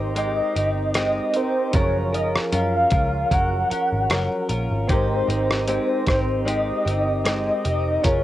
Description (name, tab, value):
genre	indie pop, bedroom pop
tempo	76 BPM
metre	4/4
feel	swing 55% on 16ths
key	Ab major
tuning	A4 = 439 Hz
part	soft octave-layered synth lead	melody	0.0-8.2 s	C5 to Gb5	-23 LUFS	equal	ensemble chorus, cassette tape, analog delay
part	direct-recorded clean electric guitar	accompaniment	0.0-8.2 s	Gb3 to Bb4	-27 LUFS	left 1 dB	lush chorus, vibrato effect, cassette tape
part	soft electric-piano-like synth keys	accompaniment	0.0-8.2 s	F3 to Bb4	-30 LUFS	right 3 dB	chorus, cassette tape
part	vintage muted picked electric bass	bass	0.0-8.2 s	F1 to Gb2	-25 LUFS	equal	none
part	dusty soul sampler-style drum kit	drums	0.2-8.2 s	hi-hat, kick drum, rim click, shaker	-24 LUFS	equal	cassette tape
room	light reverb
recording	home recording on cassette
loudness	-19 LUFS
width	side -14 dB against mid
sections	0.0-8.2 A section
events	none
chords	0.0 Abmaj7; 1.7 Gbmaj7; 4.9 Abmaj7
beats	0.16 0.95 | 1.74 2.53 3.31 4.10 | 4.89 5.68 6.47 7.26 | 8.05